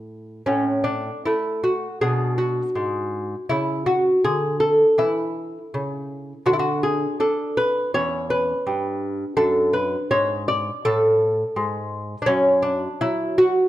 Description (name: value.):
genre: classical, baroque-style dance for lute.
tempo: 81 BPM.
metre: 4/4.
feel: rubato.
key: unclear.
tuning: A4 = 441 Hz.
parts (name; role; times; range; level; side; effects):
lute; solo; 0.0-13.7 s; E2 to D5; -19 LUFS; equal; none.
room: moderate recital hall reverb, RT60 1.4 s.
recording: none.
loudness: -19 LUFS.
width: side -14 dB against mid.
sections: 0.5-13.7 A section.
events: none.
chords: 0.5 N.C.; 2.0 G#dim/B; 3.5 C#m; 6.5 N.C.; 7.9 C#dim/E; 9.4 D/F#; 12.3 N.C..